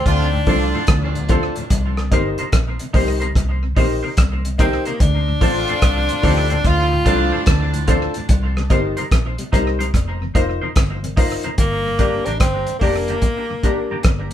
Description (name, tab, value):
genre	roots reggae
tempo	73 BPM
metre	4/4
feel	swing 65% on 16ths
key	G minor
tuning	A4 = 440 Hz
part	clear tenor saxophone	melody	0.0-14.3 s	Bb3 to F4	-22 LUFS	left 1 dB	none
part	clear horn section	second line	0.1-7.8 s	A2 to G4	-25 LUFS	right 3 dB	tape echo
part	vintage muted fingered electric bass	bass	0.1-14.3 s	F1 to D2	-22 LUFS	equal	none
part	cloth-damped thuddy drum kit	drums	0.1-14.3 s	hi-hat, kick drum, rim click	-18 LUFS	equal	none
part	mellow tonewheel organ	accompaniment	0.3-14.3 s	D2 to G4	-30 LUFS	left 2 dB	tape echo
part	semi-hollow electric guitar	accompaniment	0.5-14.0 s	D4 to C5	-27 LUFS	right 1 dB	tape echo
part	dark concert grand piano	stabs	0.5-13.9 s	D4 to D5	-23 LUFS	left 3 dB	none
room	moderate studio reverb, RT60 0.6 s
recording	band playing live in one room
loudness	-16 LUFS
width	side -11 dB against mid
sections	0.0-11.6 A section; 11.6-14.3 B section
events	none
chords	0.0 Dm7; 1.7 Cm7; 5.0 Dm7; 8.3 Cm7; 9.9 F7sus4; 11.6 Gm